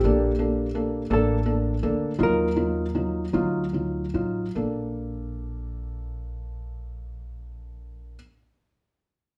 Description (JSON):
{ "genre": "six-eight pop ballad", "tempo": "48-57 BPM (dotted quarters)", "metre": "6/8", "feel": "straight", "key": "Bb major", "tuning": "A4 = 440 Hz", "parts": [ { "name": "hollow-body jazz guitar", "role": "melody", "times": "0.0-3.7 s", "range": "G4 to Bb4", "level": "-30 LUFS", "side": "equal", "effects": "none" }, { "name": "felt-muted upright piano", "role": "accompaniment", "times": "0.0-8.2 s", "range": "Gb3 to A4", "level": "-28 LUFS", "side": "equal", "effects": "none" }, { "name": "upright bass", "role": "bass", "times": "0.0-8.2 s", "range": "A1 to Eb2", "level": "-32 LUFS", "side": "equal", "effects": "none" } ], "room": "wet large studio reverb, RT60 0.9 s", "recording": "band playing live in one room", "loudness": "-26 LUFS", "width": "mono", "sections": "0.1-4.6 A section; 4.6-9.4 B section", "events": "slowing down 0.1-4.6", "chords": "0.1 Bbmaj7; 2.2 Ebmadd9; 4.6 Bbmaj7", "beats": "| 0.05 1.11 | 2.21 3.35 | 4.57 5.82 | 7.08" }